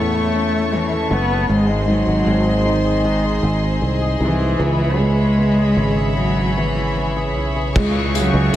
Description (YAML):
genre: pop ballad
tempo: 77 BPM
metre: 4/4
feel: straight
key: C# minor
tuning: A4 = 440 Hz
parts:
  - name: dark cello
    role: melody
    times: 0.0-8.6 s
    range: D#3 to B3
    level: -20 LUFS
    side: equal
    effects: analog delay
  - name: bell-like tine electric piano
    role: accompaniment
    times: 0.0-8.6 s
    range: C#3 to E4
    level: -23 LUFS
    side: right 2 dB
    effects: analog delay
  - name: warm studio string section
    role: sustained chords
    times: 0.0-8.6 s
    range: G#4 to C#6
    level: -23 LUFS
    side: equal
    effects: none
  - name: flamenco guitar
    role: arpeggios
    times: 0.0-8.6 s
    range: G#2 to A4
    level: -27 LUFS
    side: left 3 dB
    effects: analog delay
  - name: sustaining fretless electric bass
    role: bass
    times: 0.0-8.6 s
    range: F#1 to E2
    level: -21 LUFS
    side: equal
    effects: none
  - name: loose indie drum kit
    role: drums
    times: 7.8-8.6 s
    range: crash cymbal, hi-hat, kick drum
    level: -20 LUFS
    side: left 1 dB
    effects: none
room: moderate echo chamber reverb, RT60 2.1 s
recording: echo-heavy mix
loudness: -15 LUFS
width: side -12 dB against mid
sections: 0.0-7.8 A section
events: none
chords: 0.0 A; 1.5 G#; 4.6 C#m7; 7.8 C#m